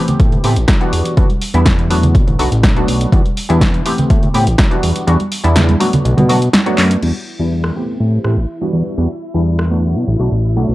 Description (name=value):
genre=filtered disco house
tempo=123 BPM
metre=4/4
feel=straight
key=E minor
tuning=A4 = 443 Hz
part: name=funky polysynth comp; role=accompaniment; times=0.0-10.7 s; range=E3 to G4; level=-18 LUFS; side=equal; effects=chorus, phaser, sidechain pumping, low-pass filter
part: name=punchy analog drum machine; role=drums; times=0.1-9.7 s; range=crash cymbal, handclaps, hi-hat, rim click, snare drum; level=-19 LUFS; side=equal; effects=overdrive, sidechain pumping on hats, sidechain pumping on cymbals
part: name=tambourine and congas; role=percussion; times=0.1-7.0 s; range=none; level=-20 LUFS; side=right 2 dB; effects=sidechain pumping on perc, low-pass filter on perc
part: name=fat analog bass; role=bass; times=0.2-10.7 s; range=A1 to B2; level=-14 LUFS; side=equal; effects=sidechain pumping, low-pass filter
part: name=electronic kick drum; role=drums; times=0.2-4.7 s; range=none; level=-12 LUFS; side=equal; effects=overdrive
part: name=string machine, full ensemble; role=sustained chords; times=7.0-10.7 s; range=E4 to E5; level=-27 LUFS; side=left 2 dB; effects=ensemble chorus, sidechain pumping, low-pass filter
room=digital ambience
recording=dry, gritty hardware recording, cassette tape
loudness=-11 LUFS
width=side -17 dB against mid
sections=0.0-7.0 A section; 7.0-10.7 B section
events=kick drops out 5.1-7.0; drum fill 6.8; filter sweep 7.0-10.7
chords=0.0 Am9; 0.9 Em9; 2.1 Bm7; 3.1 Em9; 3.9 Am9; 4.8 Em9; 6.1 Bm7; 7.0 Em9; 7.8 Am9; 8.7 Em9; 10.0 Bm7